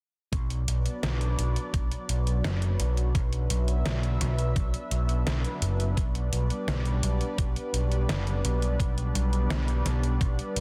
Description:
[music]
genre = synthwave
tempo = 85 BPM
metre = 4/4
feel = straight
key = B minor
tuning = A4 = 435 Hz
[part]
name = lush unison pad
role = sustained chords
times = 0.6-10.6 s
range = F#3 to E5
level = -36 LUFS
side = equal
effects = chorus, phaser, sidechain pumping
[part]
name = overdriven picked electric bass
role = bass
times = 0.3-10.6 s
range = F#1 to B1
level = -29 LUFS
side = equal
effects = none
[part]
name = detuned 8-bit digital drum machine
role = drums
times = 0.3-10.6 s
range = hi-hat, snare drum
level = -36 LUFS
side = equal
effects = none
[part]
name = electronic kick drum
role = drums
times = 0.3-10.3 s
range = none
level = -30 LUFS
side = equal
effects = none
[sound]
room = light reverb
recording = dense, heavily limited modern master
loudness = -28 LUFS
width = mono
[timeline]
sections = 0.3-10.6 A section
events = none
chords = 0.3 Bm; 6.0 G

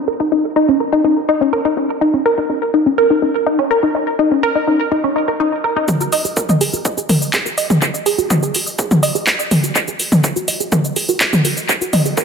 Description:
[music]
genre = melodic techno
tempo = 124 BPM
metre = 4/4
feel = straight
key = unclear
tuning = A4 = 440 Hz
[part]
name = tight sequenced synth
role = arpeggios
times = 0.0-12.2 s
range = C#4 to D#5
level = -16 LUFS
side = equal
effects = chorus, sidechain pumping, tape echo
[part]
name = electronic kick drum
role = drums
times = 5.9-12.2 s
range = none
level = -24 LUFS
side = right 1 dB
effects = overdrive, high-pass filter on kick, high-pass filter on room
[part]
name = house drum kit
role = drums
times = 5.9-12.2 s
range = handclaps, hi-hat, shaker, toms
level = -15 LUFS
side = equal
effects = overdrive, analog delay
[sound]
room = wet echo chamber reverb, RT60 2.2 s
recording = echo-heavy mix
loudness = -13 LUFS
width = side -6 dB against mid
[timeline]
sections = 0.0-5.9 A section; 5.9-12.2 B section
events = filter sweep on synth arpeggio sound 0.0-5.9, 5.9-12.2; build-up 5.9-12.2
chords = none

